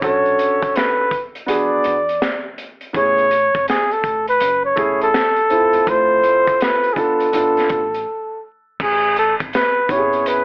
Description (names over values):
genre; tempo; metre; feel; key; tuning
hip hop, jazz-hop; 82 BPM; 4/4; swing 63% on 16ths; A major; A4 = 440 Hz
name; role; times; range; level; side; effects
breathy flugelhorn; melody; 0.0-10.4 s; G#4 to D5; -16 LUFS; equal; none
dark grand piano; accompaniment; 0.0-10.4 s; A3 to A4; -19 LUFS; right 1 dB; none
upright bass; bass; 0.0-10.4 s; E1 to E2; -34 LUFS; equal; none
crunchy breakbeat drum kit; drums; 0.0-10.4 s; crash cymbal, hi-hat, kick drum, snare drum; -24 LUFS; equal; none
room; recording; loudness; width
moderate studio reverb, RT60 0.6 s; telephone sound; -14 LUFS; side -25 dB against mid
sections
0.0-8.8 A section; 8.8-10.4 B section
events
break 8.1-8.8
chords
0.0 Bm7; 1.5 E9; 2.9 Amaj7; 4.4 F#m7; 5.9 Dm7; 7.3 G9; 8.8 Amaj9